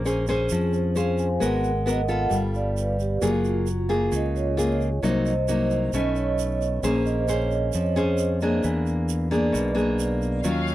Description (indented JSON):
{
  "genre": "bossa nova",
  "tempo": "133 BPM",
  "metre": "4/4",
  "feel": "straight",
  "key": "unclear",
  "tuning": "A4 = 440 Hz",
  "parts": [
    { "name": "nylon-string guitar", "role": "accompaniment", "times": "0.0-10.7 s", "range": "Cb3 to C5", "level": "-25 LUFS", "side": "left 1 dB", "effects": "none" },
    { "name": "fingered electric bass", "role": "bass", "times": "0.0-10.7 s", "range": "Gb1 to F2", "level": "-26 LUFS", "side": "equal", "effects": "none" },
    { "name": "tube shaker", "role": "percussion", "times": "0.1-10.7 s", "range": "none", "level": "-40 LUFS", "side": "right 20 dB", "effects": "none" },
    { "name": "vibraphone with soft mallets", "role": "accompaniment", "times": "0.5-10.5 s", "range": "F4 to Ab5", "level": "-28 LUFS", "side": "right 2 dB", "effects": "none" },
    { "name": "muted studio string section", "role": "sustained chords", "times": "10.4-10.7 s", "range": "Db4 to F5", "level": "-30 LUFS", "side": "left 3 dB", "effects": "none" }
  ],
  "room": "light reverb",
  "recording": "dry, close 1970s-style studio recording",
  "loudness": "-21 LUFS",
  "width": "side -14 dB against mid",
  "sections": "0.0-10.7 A section",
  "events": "vibraphone solo 0.0-10.7",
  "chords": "0.0 Bbm9; 1.4 Abm9; 2.3 G9; 3.2 Gbmaj9; 5.0 Cm7b5; 5.9 Cb9; 6.8 Bbm9; 8.6 E7#11"
}